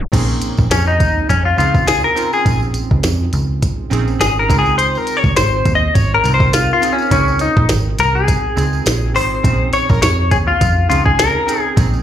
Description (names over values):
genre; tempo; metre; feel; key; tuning
indie pop, bedroom pop; 103 BPM; 4/4; swing 55% on 16ths; Bb minor; A4 = 440 Hz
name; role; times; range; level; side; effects
direct-recorded clean electric guitar; accompaniment; 0.0-11.7 s; Bb3 to Eb5; -16 LUFS; left 3 dB; wide subtle chorus, vibrato effect, slapback echo
vintage muted picked electric bass; bass; 0.0-12.0 s; Ab1 to F2; -17 LUFS; equal; none
glitchy drum kit; drums; 0.0-11.9 s; crash cymbal, hi-hat, kick drum, snare drum; -17 LUFS; equal; overdrive
warm analog keys; accompaniment; 0.1-12.0 s; C4 to Bb4; -24 LUFS; right 8 dB; chorus, slapback echo
tambourine; percussion; 0.1-12.0 s; none; -31 LUFS; right 5 dB; none
room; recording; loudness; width
little or no reverb; live gig heard through the venue's PA, club reverb, tape stop; -12 LUFS; side -10 dB against mid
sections
0.1-12.0 A section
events
clean electric guitar solo 0.1-12.0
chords
0.1 Bbm11